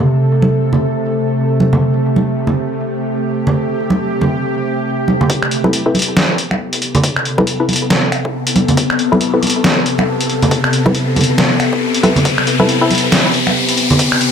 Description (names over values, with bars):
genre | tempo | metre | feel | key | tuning
deep dubstep | 138 BPM | 4/4 | swing 59% on 16ths, half-time | A minor | A4 = 441 Hz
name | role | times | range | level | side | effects
bowed-like drone | sustained chords | 0.0-14.3 s | C3 to A4 | -16 LUFS | left 1 dB | built-in reverb
congas | percussion | 0.4-14.0 s | none | -17 LUFS | right 2 dB | dub echo
electronic kick drum | drums | 5.3-14.1 s | none | -22 LUFS | equal | overdrive, high-pass filter on kick
trip hop sampler-style drum kit | drums | 5.3-14.3 s | finger snaps, hi-hat, snare drum | -16 LUFS | equal | none
riser | sound effects | 6.7-14.3 s | none | -21 LUFS | left 3 dB | none
filtered dub chord stab | stabs | 5.6-12.9 s | C4 to B4 | -19 LUFS | left 2 dB | chorus, dub echo
room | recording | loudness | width
moderate digital room reverb, RT60 1.0 s, digital ambience | none | -12 LUFS | side -7 dB against mid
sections
0.0-5.3 A section; 5.3-14.3 B section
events
filter sweep on synth drone 0.0-5.3, 5.3-14.3; build-up 5.3-14.3; filter sweep on synth stab 5.3-14.3; riser 6.7-14.3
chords
0.0 Am; 5.3 Amadd9